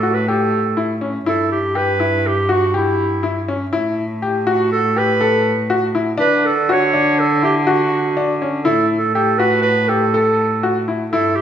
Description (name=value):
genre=contemporary instrumental, chamber music in an uneven meter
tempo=122 BPM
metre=5/4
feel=straight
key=A mixolydian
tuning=A4 = 440 Hz
part: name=clear clarinet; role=melody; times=0.0-11.4 s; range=E4 to C#5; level=-18 LUFS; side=right 4 dB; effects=none
part: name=bright baby grand piano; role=arpeggios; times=0.0-11.4 s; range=C#4 to A4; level=-19 LUFS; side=left 3 dB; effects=none
part: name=rich cello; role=bass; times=0.0-11.4 s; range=G2 to D3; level=-22 LUFS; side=equal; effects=none
room=wet recital hall reverb, RT60 1.4 s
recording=minimal, uncompressed stereo recording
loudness=-14 LUFS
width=side -9 dB against mid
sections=0.0-1.3 A section; 1.3-11.4 B section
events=none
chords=0.0 A7(no3); 1.3 G6; 3.7 Asus2; 6.2 D; 8.7 A5